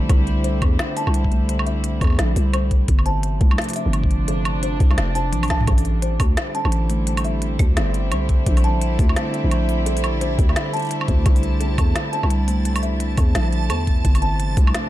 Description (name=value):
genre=half-time drum and bass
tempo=172 BPM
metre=4/4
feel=swing 59% on 16ths, half-time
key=unclear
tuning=A4 = 438 Hz
part: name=warm studio string section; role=sustained chords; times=0.0-14.9 s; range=C3 to E4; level=-27 LUFS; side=right 1 dB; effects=sidechain pumping
part: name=kalimba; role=arpeggios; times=0.0-14.7 s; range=A3 to A5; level=-28 LUFS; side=left 1 dB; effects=ping-pong delay
part: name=growling 808-style bass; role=bass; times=0.0-14.7 s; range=F1 to E2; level=-20 LUFS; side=equal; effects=none
part: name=electronic kick drum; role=drums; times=0.1-14.7 s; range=none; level=-18 LUFS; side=equal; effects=none
part: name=organic electronic drum kit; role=drums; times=0.1-14.8 s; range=hi-hat, snare drum, toms, woodblock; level=-27 LUFS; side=equal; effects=none
part: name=backwards swelling texture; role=texture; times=6.8-14.9 s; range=A5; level=-35 LUFS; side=right 5 dB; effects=built-in reverb
room=little or no reverb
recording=dark, warm production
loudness=-17 LUFS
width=side -14 dB against mid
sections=0.0-5.7 A section; 5.7-14.9 A section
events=drop 0.0-5.7, 5.7-14.9; drum fill 5.3-5.7; band accent 5.5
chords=0.1 C; 2.9 Gmadd9; 5.7 Am; 8.5 C; 14.0 Gsus2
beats=| 0.10 0.44 0.79 1.14 | 1.49 1.84 2.19 2.54 | 2.89 3.23 3.58 3.93 | 4.28 4.63 4.98 5.33 | 5.68 6.03 6.37 6.72 | 7.07 7.42 7.77 8.12 | 8.47 8.82 9.16 9.51 | 9.86 10.21 10.56 10.91 | 11.26 11.61 11.96 12.30 | 12.65 13.00 13.35 13.70 | 14.05 14.40 14.75